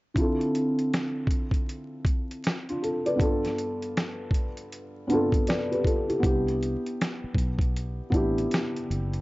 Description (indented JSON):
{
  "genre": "lo-fi hip hop",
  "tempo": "79 BPM",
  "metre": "4/4",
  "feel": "swing 62% on 16ths",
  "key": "D dorian",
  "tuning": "A4 = 440 Hz",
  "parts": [
    { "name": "felt-muted upright piano", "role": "accompaniment", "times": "0.1-9.2 s", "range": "G2 to D5", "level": "-27 LUFS", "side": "equal", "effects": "cassette tape, low-pass filter" },
    { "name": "dusty soul sampler-style drum kit", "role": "drums", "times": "0.2-9.2 s", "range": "hi-hat, kick drum, snare drum", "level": "-27 LUFS", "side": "equal", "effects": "none" },
    { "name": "fingered electric bass", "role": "bass", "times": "6.2-9.2 s", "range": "F#1 to C2", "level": "-30 LUFS", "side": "equal", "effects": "none" }
  ],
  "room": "light reverb",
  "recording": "dry, gritty hardware recording, vinyl crackle, nothing above 7.7 kHz",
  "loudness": "-24 LUFS",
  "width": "side -20 dB against mid",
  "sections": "0.2-9.2 A section",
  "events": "none",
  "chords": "0.2 Dm9; 3.2 G7; 6.2 Cmaj9",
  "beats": "| 0.16 0.92 1.68 2.44 | 3.19 3.95 4.71 5.47 | 6.23 6.99 7.75 8.51"
}